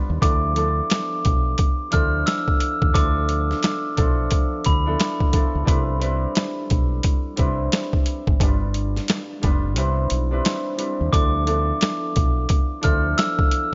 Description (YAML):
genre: hip hop, boom-bap hip-hop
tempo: 88 BPM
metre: 4/4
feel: swing 61% on 16ths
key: D dorian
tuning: A4 = 444 Hz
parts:
  - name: concert harp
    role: accompaniment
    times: 0.0-13.7 s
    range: F3 to B4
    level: -29 LUFS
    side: equal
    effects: cassette tape, high-pass filter, low-pass filter
  - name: deep dub fingered electric bass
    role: bass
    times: 0.1-13.1 s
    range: F1 to Eb2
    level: -26 LUFS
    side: equal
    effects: none
  - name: glockenspiel with soft plastic mallets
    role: melody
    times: 0.2-4.8, 11.1-13.5 s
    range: B5 to F6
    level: -28 LUFS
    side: equal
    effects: high-pass filter, low-pass filter, tape echo
  - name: boom bap sampler-style drum kit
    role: drums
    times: 0.2-13.7 s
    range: hi-hat, kick drum, snare drum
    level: -23 LUFS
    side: equal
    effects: vintage 12-bit sampler grit
room: light reverb, small room ambience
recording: nothing above 7.6 kHz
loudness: -21 LUFS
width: mono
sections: 0.0-11.1 A section; 11.1-13.7 B section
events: kick muted 9.8-11.1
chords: 0.2 Dm69; 5.7 Cmaj9; 8.4 G7; 9.8 Cmaj9; 11.1 Dm69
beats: | 0.22 0.90 1.58 2.27 | 2.95 3.63 4.31 4.99 | 5.68 6.36 7.04 7.72 | 8.40 9.09 9.77 10.45 | 11.13 11.81 12.49 13.18